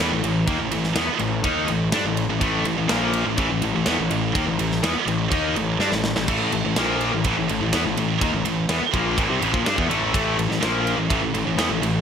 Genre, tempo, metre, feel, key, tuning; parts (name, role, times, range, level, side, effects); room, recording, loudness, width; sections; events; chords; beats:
heavy metal; 124 BPM; 4/4; straight; A4 = 439 Hz
distorted electric guitar; riff; 0.0-12.0 s; A2 to D#4; -24 LUFS; left 8 dB; distortion
heavy high-gain guitar; riff; 0.0-12.0 s; A2 to D#4; -24 LUFS; right 10 dB; distortion
fuzz picked electric bass; bass; 0.0-12.0 s; A1 to G2; -27 LUFS; equal; overdrive
tight metal drum kit; drums; 0.2-11.9 s; crash cymbal, kick drum, ride cymbal, snare drum; -26 LUFS; right 1 dB; gated reverb
light reverb; bright 1980s-style digital production; -19 LUFS; side -7 dB against mid
0.0-12.0 A section
drum fill 5.8-6.3
0.0 A5
0.00 | 0.48 0.96 1.45 1.93 | 2.41 2.90 3.38 3.86 | 4.34 4.83 5.31 5.79 | 6.28 6.76 7.24 7.72 | 8.21 8.69 9.17 9.65 | 10.13 10.62 11.10 11.58